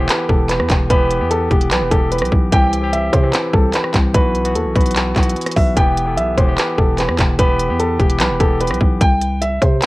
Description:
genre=hip hop, trap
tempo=148 BPM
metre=4/4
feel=half-time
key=E minor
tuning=A4 = 443 Hz
part: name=dark baby grand piano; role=melody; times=0.0-9.9 s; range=G4 to G5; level=-19 LUFS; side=equal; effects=none
part: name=barky tine electric piano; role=accompaniment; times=0.0-9.0 s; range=E3 to A4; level=-22 LUFS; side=left 2 dB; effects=none
part: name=growling 808-style bass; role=bass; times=0.0-9.8 s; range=E1 to C3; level=-20 LUFS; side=equal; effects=none
part: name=trap drum kit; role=drums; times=0.1-9.9 s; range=handclaps, hi-hat, kick drum, rim click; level=-16 LUFS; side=equal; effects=none
room=light reverb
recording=worn, warbling old tape, cassette tape, warbly pitch drift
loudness=-13 LUFS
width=side -20 dB against mid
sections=0.0-9.9 A section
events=none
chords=0.0 Em; 2.5 C; 4.1 Bsus4; 5.8 Em; 9.0 C5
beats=0.09 0.50 | 0.90 1.31 1.71 2.12 | 2.52 2.93 3.33 3.74 | 4.14 4.55 4.96 5.36 | 5.77 6.17 6.58 6.98 | 7.39 7.79 8.20 8.61 | 9.01 9.42 9.82

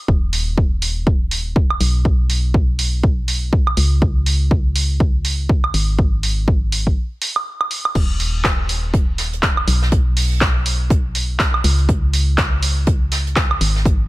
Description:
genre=piano house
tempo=122 BPM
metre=4/4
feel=swing 59% on 16ths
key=unclear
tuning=A4 = 440 Hz
part: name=organ-like FM bass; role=bass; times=0.1-14.1 s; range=Eb1 to Db2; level=-19 LUFS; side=equal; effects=sidechain pumping
part: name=electronic kick drum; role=drums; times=0.1-14.0 s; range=none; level=-16 LUFS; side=equal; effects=overdrive
part: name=punchy analog drum machine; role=drums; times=0.3-13.7 s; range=crash cymbal, handclaps, hi-hat, woodblock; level=-21 LUFS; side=right 2 dB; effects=none
part: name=soft brush drum kit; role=drums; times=8.0-14.0 s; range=hi-hat, snare drum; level=-30 LUFS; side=right 2 dB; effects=high-pass filter on hats, high-pass filter on snare, high-pass filter on room
room=little or no reverb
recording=none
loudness=-15 LUFS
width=side -19 dB against mid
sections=0.0-14.1 A section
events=break 7.0-8.0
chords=none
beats=| 0.09 0.58 1.07 1.56 | 2.05 2.54 3.04 3.53 | 4.02 4.51 5.00 5.50 | 5.99 6.48 6.97 7.46 | 7.95 8.45 8.94 9.43 | 9.92 10.41 10.90 11.40 | 11.89 12.38 12.87 13.36 | 13.86

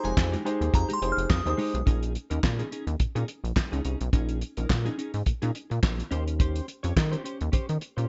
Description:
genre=early-eighties boogie funk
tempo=106 BPM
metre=4/4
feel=swing 56% on 16ths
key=Bb dorian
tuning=A4 = 440 Hz
part: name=delicate synth tine bell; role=melody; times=0.0-1.8 s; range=Ab5 to F6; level=-34 LUFS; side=equal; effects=chorus
part: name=warm grand piano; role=accompaniment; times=0.0-1.8 s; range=Eb4 to C5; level=-33 LUFS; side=equal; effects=none
part: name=clean electric guitar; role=riff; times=0.0-8.1 s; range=Ab3 to Db5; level=-37 LUFS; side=equal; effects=analog chorus
part: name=rubbery square bass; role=bass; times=0.0-8.1 s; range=F1 to Eb3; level=-31 LUFS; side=equal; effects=none
part: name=damped 70s drum kit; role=drums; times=0.0-8.1 s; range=handclaps, hi-hat, kick drum, snare drum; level=-28 LUFS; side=equal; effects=gated reverb
room=light reverb, small room ambience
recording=nothing above 7.8 kHz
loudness=-28 LUFS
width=mono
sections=0.0-1.9 A section; 1.9-8.1 B section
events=synth bell solo 0.0-1.9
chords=0.0 Fm9; 1.9 Bbm11; 6.1 Eb13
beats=0.17 0.74 1.30 | 1.87 2.44 3.00 3.57 | 4.13 4.70 5.27 5.83 | 6.40 6.96 7.53

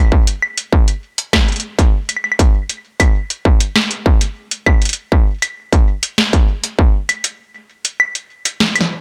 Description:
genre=IDM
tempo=99 BPM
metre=4/4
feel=straight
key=none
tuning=none
part: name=electronic kick drum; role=drums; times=0.1-6.9 s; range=none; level=-14 LUFS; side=equal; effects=distortion
part: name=electro analog drum machine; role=drums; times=0.3-8.9 s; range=claves, hi-hat, snare drum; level=-18 LUFS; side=equal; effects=none
room=little or no reverb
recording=dry, gritty hardware recording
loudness=-16 LUFS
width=mono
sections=0.0-9.0 A section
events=break 7.4-9.0; drum fill 8.6-9.0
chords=none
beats=| 0.12 0.73 1.33 1.94 | 2.54 3.15 3.76 4.36 | 4.97 5.57 6.18 6.79 | 7.39 8.00 8.61

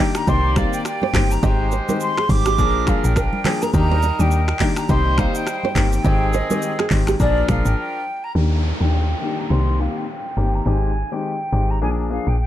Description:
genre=afrobeats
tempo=104 BPM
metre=4/4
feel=swing 58% on 16ths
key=Eb major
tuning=A4 = 440 Hz
part: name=breathy mellow jazz flute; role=melody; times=0.0-12.5 s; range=D5 to D6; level=-25 LUFS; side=right 1 dB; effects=low-pass filter, ping-pong delay
part: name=warm grand piano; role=accompaniment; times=0.0-12.3 s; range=Eb3 to Ab4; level=-24 LUFS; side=left 5 dB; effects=low-pass filter
part: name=nylon-string guitar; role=riff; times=0.0-7.4 s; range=G4 to Eb5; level=-26 LUFS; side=right 5 dB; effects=none
part: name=afro-pop drum kit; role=drums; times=0.1-7.8 s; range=finger snaps, handclaps, hi-hat, kick drum, rim click, shaker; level=-22 LUFS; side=equal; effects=none
part: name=clear horn section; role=second line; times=0.3-8.0 s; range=Eb3 to D5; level=-28 LUFS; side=right 2 dB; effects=ping-pong delay
part: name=deep log drum bass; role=bass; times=0.3-12.5 s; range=G1 to Eb2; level=-19 LUFS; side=equal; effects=none
part: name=congas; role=percussion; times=0.6-7.6 s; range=none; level=-26 LUFS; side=right 3 dB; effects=none
part: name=downlifter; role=sound effects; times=8.4-12.5 s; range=none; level=-32 LUFS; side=equal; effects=none
room=light reverb, small room ambience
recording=dark, warm production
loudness=-17 LUFS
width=side -12 dB against mid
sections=0.0-8.4 A section; 8.4-12.5 B section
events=break 7.8-8.4; filter sweep 8.4-12.5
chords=0.3 Cm7; 1.4 Abmaj7; 2.6 Bb7; 3.7 Ebmaj7; 4.9 Cm7; 6.0 Abmaj7; 7.2 Bb7; 8.4 Ebmaj7; 9.5 Cm7; 10.7 Abmaj7; 11.8 Bb7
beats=0.28 0.85 | 1.43 2.01 2.58 3.16 | 3.74 4.31 4.89 5.47 | 6.04 6.62 7.20 7.78 | 8.35 8.93 9.51 10.08 | 10.66 11.24 11.81 12.39

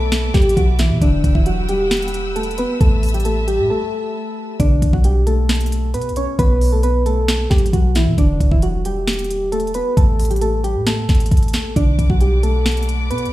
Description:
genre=hip hop, trap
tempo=134 BPM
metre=4/4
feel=half-time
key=B minor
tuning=A4 = 438 Hz
part: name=soft electric-piano-like synth keys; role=melody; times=0.0-13.3 s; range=D3 to C#5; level=-20 LUFS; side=equal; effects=chorus, plate reverb, tape echo
part: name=clear studio string section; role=sustained chords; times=0.0-4.6, 11.8-13.3 s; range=B4 to E6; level=-30 LUFS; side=left 3 dB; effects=none
part: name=clean 808-style bass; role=bass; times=0.0-13.3 s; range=E1 to B2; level=-18 LUFS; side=equal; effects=none
part: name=trap drum kit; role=drums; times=0.1-13.3 s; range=hi-hat, kick drum, snare drum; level=-18 LUFS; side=equal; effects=overdrive
room=light reverb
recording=played on a big sound system in a bare room, stone room reverb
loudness=-14 LUFS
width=side -16 dB against mid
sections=0.0-4.6 A section; 4.6-13.3 A section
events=break 3.7-4.6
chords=0.0 Bm; 1.0 Emadd9; 2.8 Asus2; 4.6 Bm; 8.2 Emadd9; 10.0 Gsus2/A; 11.8 Bm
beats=0.12 0.57 | 1.02 1.46 1.91 2.36 | 2.81 3.25 3.70 4.15 | 4.60 5.05 5.49 5.94 | 6.39 6.84 7.28 7.73 | 8.18 8.63 9.07 9.52 | 9.97 10.42 10.87 11.31 | 11.76 12.21 12.66 13.11

